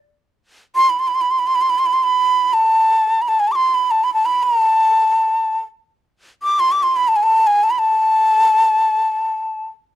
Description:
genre	Turkish makam ensemble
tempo	free time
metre	none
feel	none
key	unclear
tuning	A4 = 440 Hz
part	breathy bright ney	solo	0.8-9.7 s	G#5 to D6	-13 LUFS	equal	none
room	light reverb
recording	dry, close 1970s-style studio recording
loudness	-14 LUFS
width	side -14 dB against mid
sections	0.1-10.0 A section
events	none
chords	none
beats	free time

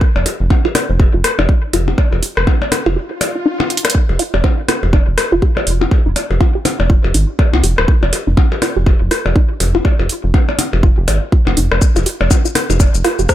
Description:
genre	minimal techno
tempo	122 BPM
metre	4/4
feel	swing 59% on 16ths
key	F minor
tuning	A4 = 444 Hz
part	resonant blip pluck	riff	0.0-13.3 s	Eb4 to C5	-21 LUFS	equal	phaser, sidechain pumping, dub echo
part	electronic kick drum	drums	0.0-13.3 s	none	-12 LUFS	equal	none
part	rubbery square bass	bass	0.2-13.3 s	Eb1 to C2	-16 LUFS	equal	sidechain pumping
part	electronic percussion blips and rim click	percussion	0.2-13.2 s	none	-18 LUFS	left 3 dB	none
part	house drum kit	drums	0.3-13.3 s	hi-hat, rim click, shaker	-19 LUFS	right 2 dB	none
part	swell	sound effects	3.1-3.9 s	none	-26 LUFS	left 3 dB	none
room	little or no reverb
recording	none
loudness	-12 LUFS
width	side -13 dB against mid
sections	0.0-13.3 A section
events	filter sweep on synth arpeggio sound 0.0-13.3; break 3.0-3.9; swell 3.1-3.9; drum fill 3.7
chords	0.0 F5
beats	| 0.01 0.50 1.00 1.49 | 1.98 2.47 2.96 3.46 | 3.95 4.44 4.93 5.42 | 5.91 6.41 6.90 7.39 | 7.88 8.37 8.87 9.36 | 9.85 10.34 10.83 11.32 | 11.82 12.31 12.80 13.29

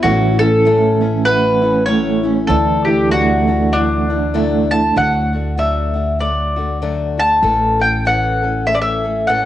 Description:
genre	acoustic folk duo or small band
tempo	98 BPM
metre	4/4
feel	swing 59% on 8ths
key	D major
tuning	A4 = 441 Hz
part	mandolin	melody	0.0-9.5 s	D4 to A5	-16 LUFS	equal	cassette tape, plate reverb
part	picked old ladder-braced acoustic guitar	accompaniment	0.0-9.5 s	A2 to A4	-21 LUFS	left 6 dB	cassette tape, plate reverb
part	electric guitar through a small old amp	arpeggios	0.0-5.0 s	E3 to F#4	-18 LUFS	right 6 dB	tremolo, cassette tape, plate reverb
part	upright bass	bass	0.0-9.5 s	A1 to D2	-20 LUFS	equal	none
room	moderate studio ambience, RT60 0.5 s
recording	home recording on cassette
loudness	-13 LUFS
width	side -12 dB against mid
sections	0.0-5.0 A section; 5.0-9.5 B section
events	none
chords	0.0 A6; 2.5 Dadd9; 5.0 D; 7.4 A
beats	| 0.05 0.66 1.28 1.89 | 2.50 3.12 3.73 4.35 | 4.96 5.58 6.20 6.81 | 7.43 8.04 8.66 9.28

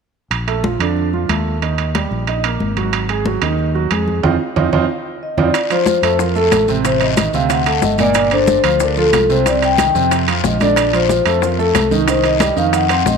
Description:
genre	Afro-Cuban jazz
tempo	184 BPM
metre	4/4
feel	straight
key	Bb major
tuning	A4 = 441 Hz
part	fingered electric bass	bass	0.3-13.2 s	G1 to F2	-21 LUFS	left 1 dB	none
part	congas	percussion	0.3-13.2 s	none	-22 LUFS	left 2 dB	none
part	timbales	percussion	0.3-13.1 s	none	-22 LUFS	right 10 dB	none
part	warm baby grand piano	accompaniment	0.5-13.2 s	Bb2 to Eb5	-19 LUFS	right 9 dB	none
part	vibraphone with medium hard mallets	melody	5.2-13.2 s	A4 to G5	-16 LUFS	left 4 dB	none
part	bongos	percussion	5.5-13.2 s	none	-25 LUFS	left 13 dB	none
part	guiro	percussion	5.5-13.2 s	none	-28 LUFS	left 15 dB	none
part	maracas	percussion	5.5-13.2 s	none	-32 LUFS	right 14 dB	none
room	moderate echo chamber reverb, RT60 2.2 s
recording	1960s-style stereo with parts hard left and right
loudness	-13 LUFS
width	side -6 dB against mid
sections	0.3-5.5 A section; 5.5-13.2 B section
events	band accent 4.2-5.5; drum fill 4.6-5.5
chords	0.3 Bbmaj7; 1.6 Eb; 2.9 Ab5; 4.2 F5; 5.5 Bbmaj7sus2 (rootless); 6.8 Adim; 7.5 D7; 8.2 Gm9; 9.5 Cm; 10.1 F5; 10.8 Bbmaj9; 12.1 Cmadd11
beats	| 0.31 0.64 0.97 1.29 | 1.62 1.95 2.27 2.60 | 2.93 3.26 3.58 3.91 | 4.24 4.56 4.89 5.22 | 5.54 5.87 6.19 6.52 | 6.85 7.17 7.50 7.83 | 8.15 8.48 8.81 9.13 | 9.46 9.79 10.11 10.44 | 10.77 11.10 11.42 11.75 | 12.08 12.40 12.73 13.06

